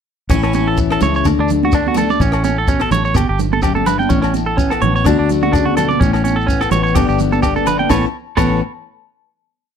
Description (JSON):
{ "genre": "highlife guitar band", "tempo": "126 BPM", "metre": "4/4", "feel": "swing 55% on 16ths", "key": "A mixolydian", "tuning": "A4 = 440 Hz", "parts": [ { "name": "picked steel-string acoustic guitar", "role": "accompaniment", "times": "0.3-8.6 s", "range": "F#2 to G4", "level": "-19 LUFS", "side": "left 12 dB", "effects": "none" }, { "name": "clean electric guitar", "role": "arpeggios", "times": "0.3-8.6 s", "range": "C#4 to G5", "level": "-18 LUFS", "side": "right 6 dB", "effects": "slapback echo" }, { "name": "fingered electric bass", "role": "bass", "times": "0.3-8.6 s", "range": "G1 to D2", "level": "-19 LUFS", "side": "equal", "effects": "none" }, { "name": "compact cocktail drum kit", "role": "drums", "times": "0.3-8.5 s", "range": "crash cymbal, hi-hat, kick drum, rim click, snare drum", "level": "-20 LUFS", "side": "equal", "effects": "none" }, { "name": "shekere", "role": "percussion", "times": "0.3-8.6 s", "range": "none", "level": "-27 LUFS", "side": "right 2 dB", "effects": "none" }, { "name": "agogo bells", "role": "percussion", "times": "0.4-8.5 s", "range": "none", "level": "-27 LUFS", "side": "left 18 dB", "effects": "none" }, { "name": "congas", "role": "percussion", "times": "0.5-8.6 s", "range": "none", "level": "-22 LUFS", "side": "right 14 dB", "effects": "none" } ], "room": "small room reverb", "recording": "dry, close 1970s-style studio recording", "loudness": "-13 LUFS", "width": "side -8 dB against mid", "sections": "0.3-7.9 groove; 7.9-9.8 final chord", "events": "none", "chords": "0.3 Aadd9; 1.3 D; 2.2 Aadd9; 3.2 Gadd9; 4.1 Aadd9; 5.1 D; 6.0 Aadd9; 7.0 Gadd9; 7.9 Aadd9" }